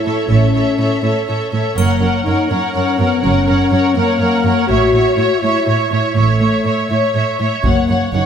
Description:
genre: cinematic, epic orchestral film score.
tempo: 82 BPM (dotted quarters).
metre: 6/8.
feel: straight.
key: unclear.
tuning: A4 = 440 Hz.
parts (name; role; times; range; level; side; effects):
clear symphonic violin section; melody; 0.0-8.3 s; E5 to F#5; -23 LUFS; left 3 dB; none.
rich symphonic violin section; second line; 0.0-8.3 s; C#5; -22 LUFS; left 3 dB; none.
rich symphonic viola section; accompaniment; 0.0-7.6 s; A4 to C#5; -21 LUFS; right 4 dB; none.
dark French horn section; sustained chords; 0.0-8.3 s; A3 to F#4; -18 LUFS; left 4 dB; none.
rich symphonic cello section; bass; 0.1-8.2 s; F#2 to A2; -19 LUFS; right 3 dB; none.
rich symphonic double bass section; bass; 0.3-8.2 s; F#1 to A1; -18 LUFS; right 4 dB; none.
triangle; percussion; 1.8-2.7 s; none; -34 LUFS; left 1 dB; none.
taiko ensemble; drums; 7.6-8.3 s; none; -20 LUFS; equal; none.
room: wet scoring stage reverb, RT60 1.9 s.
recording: none.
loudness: -12 LUFS.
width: side -8 dB against mid.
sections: 0.0-7.6 A section.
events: none.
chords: 0.0 A; 1.8 F#; 4.7 A; 7.6 F#.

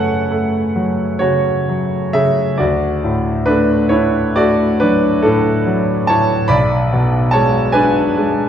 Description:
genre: classical, romantic nocturne for solo piano.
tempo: 42-49 BPM (dotted quarters).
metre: 9/8.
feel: rubato.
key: unclear.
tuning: A4 = 440 Hz.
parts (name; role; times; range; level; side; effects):
bright grand piano; solo; 0.0-8.5 s; B1 to B5; -13 LUFS; equal; none.
room: wet recital hall reverb, RT60 1.4 s.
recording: dark, warm production.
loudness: -13 LUFS.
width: side -9 dB against mid.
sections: 0.0-8.5 A section.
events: none.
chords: 0.0 F#m; 2.6 D; 6.5 G#dim/B.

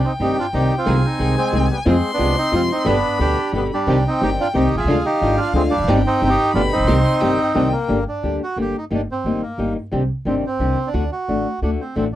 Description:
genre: tango.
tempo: 179 BPM.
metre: 3/4.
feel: rubato.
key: C harmonic minor, G harmonic minor from 7.9 s.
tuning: A4 = 440 Hz.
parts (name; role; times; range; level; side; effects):
bandoneon; melody; 0.0-12.2 s; G3 to Ab4; -21 LUFS; right 2 dB; none.
warm violin; second line; 0.0-7.9 s; E5 to C6; -26 LUFS; left 3 dB; none.
flamenco guitar; accompaniment; 0.2-12.1 s; B2 to Ab4; -21 LUFS; left 2 dB; none.
clear symphonic string section; stabs; 0.2-7.7 s; Ab3 to Ab4; -29 LUFS; right 4 dB; none.
upright bass; bass; 0.2-12.1 s; E1 to F2; -22 LUFS; right 1 dB; none.
room: little or no reverb.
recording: dry, close 1970s-style studio recording.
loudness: -16 LUFS.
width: side -13 dB against mid.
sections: 0.0-7.9 A section; 7.9-12.2 B section.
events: none.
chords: 0.0 Cm; 0.9 Ab/C; 1.9 Fm; 2.9 G; 3.9 Cm; 4.9 Ddim; 5.9 Cm/G; 6.5 G; 6.9 Cm; 7.9 Gm; 8.9 Eb/G; 9.9 Cmadd9; 10.9 D.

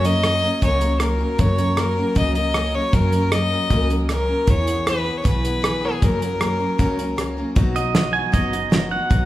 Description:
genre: honky-tonk and classic country.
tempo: 155 BPM.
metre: 4/4.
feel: straight.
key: unclear.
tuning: A4 = 440 Hz.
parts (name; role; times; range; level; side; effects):
clear fiddle; melody; 0.0-7.2 s; G#4 to D#5; -23 LUFS; left 2 dB; none.
picked steel-string acoustic guitar; accompaniment; 0.0-9.3 s; F#2 to A#4; -24 LUFS; left 1 dB; none.
upright bass; bass; 0.0-9.3 s; F#1 to F#2; -24 LUFS; equal; none.
damped 70s drum kit; drums; 0.0-9.2 s; hi-hat, kick drum, rim click, snare drum; -21 LUFS; equal; none.
pedal steel guitar; second line; 7.8-9.3 s; D#5 to G#5; -22 LUFS; right 4 dB; none.
room: moderate recital hall reverb, RT60 1.7 s.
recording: recorded in a church or concert hall.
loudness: -17 LUFS.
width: side -15 dB against mid.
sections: 0.0-7.6 A section; 7.6-9.3 B section.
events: pedal steel guitar solo 7.6-9.3.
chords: 0.0 F#; 4.5 E; 6.0 F#; 7.6 B.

